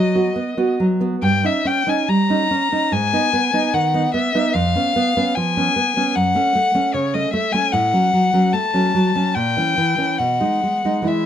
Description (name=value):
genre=romantic duo for violin and classical guitar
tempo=73 BPM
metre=4/4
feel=uneven beats, rubato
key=unclear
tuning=A4 = 440 Hz
part: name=warm violin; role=melody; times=0.0-11.3 s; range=C#5 to A#5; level=-19 LUFS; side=left 4 dB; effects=none
part: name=nylon-string guitar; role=accompaniment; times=0.0-11.3 s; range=E#2 to F#4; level=-19 LUFS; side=right 2 dB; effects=none
room=light reverb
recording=dark, warm production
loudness=-16 LUFS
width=side -9 dB against mid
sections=0.0-11.3 A section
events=none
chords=0.0 B; 1.2 D#7/G; 2.9 G#m; 4.5 C#7/E#; 6.1 F#m; 7.7 F#m/A; 9.3 A#dim7; 10.2 B6